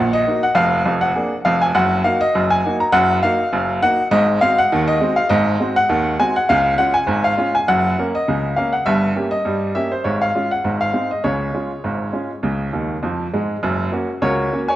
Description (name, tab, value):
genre	ragtime piano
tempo	101 BPM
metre	2/4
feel	swing 55% on 16ths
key	Db major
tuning	A4 = 441 Hz
part	bright upright piano	solo	0.0-14.8 s	F1 to Bb5	-16 LUFS	equal	none
room	moderate scoring stage reverb, RT60 1.9 s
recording	worn, warbling old tape, cassette tape, warbly pitch drift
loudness	-16 LUFS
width	side -14 dB against mid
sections	0.0-13.6 A section; 13.6-14.8 B section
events	upright piano fill 12.7-13.6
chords	0.0 Ebm; 0.6 Bb7/F; 1.8 Ebm/Gb; 4.1 Ab7; 6.5 Db; 7.7 Gb; 8.9 Gdim; 10.0 Db/Ab; 10.6 Ab; 11.2 Db; 13.6 Gb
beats	| 0.56 1.16 | 1.75 2.34 | 2.94 3.53 | 4.12 4.71 | 5.30 5.90 | 6.49 7.08 | 7.67 8.27 | 8.86 9.45 | 10.04 10.64 | 11.23 11.83 | 12.43 13.02 | 13.62 14.22